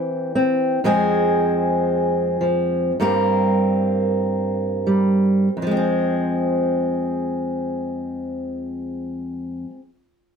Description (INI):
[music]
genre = folk, solo fingerstyle acoustic guitar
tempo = 42-62 BPM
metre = 4/4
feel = straight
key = F minor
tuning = A4 = 440 Hz
[part]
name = fingerpicked steel-string acoustic guitar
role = solo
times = 0.0-9.8 s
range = F2 to Bb4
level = -18 LUFS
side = equal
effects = none
[sound]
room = light reverb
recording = none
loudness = -18 LUFS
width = side -6 dB against mid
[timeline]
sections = 0.0-5.6 A section; 5.6-10.4 B section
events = slowing down 0.0-5.6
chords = 0.0 C; 0.8 Fm; 3.0 Gmadd11; 5.6 Fm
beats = | 0.84 1.88 2.99 4.21 | 5.56 6.99 8.41 9.83